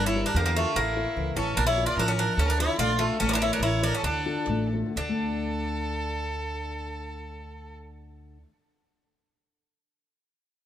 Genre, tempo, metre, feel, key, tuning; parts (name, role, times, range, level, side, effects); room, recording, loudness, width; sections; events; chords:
greek folk, Greek bouzouki band; 119-148 BPM; 2/4; straight; D harmonic minor; A4 = 445 Hz
Greek bouzouki; melody; 0.0-8.4 s; A3 to F4; -27 LUFS; equal
rich violin; second line; 0.0-7.7 s; E4 to D5; -32 LUFS; right 2 dB
nylon-string guitar; accompaniment; 0.0-8.5 s; D3 to D5; -32 LUFS; left 4 dB
upright bass; bass; 0.0-8.4 s; G1 to E2; -30 LUFS; right 1 dB
light reverb; -24 LUFS; side -10 dB against mid
0.0-5.0 A section; 5.0-7.0 B section
slowing down 3.2-5.0
0.0 Gm; 0.8 A; 1.6 Bb; 2.4 Dm; 3.2 A; 4.0 Dm; 5.0 D5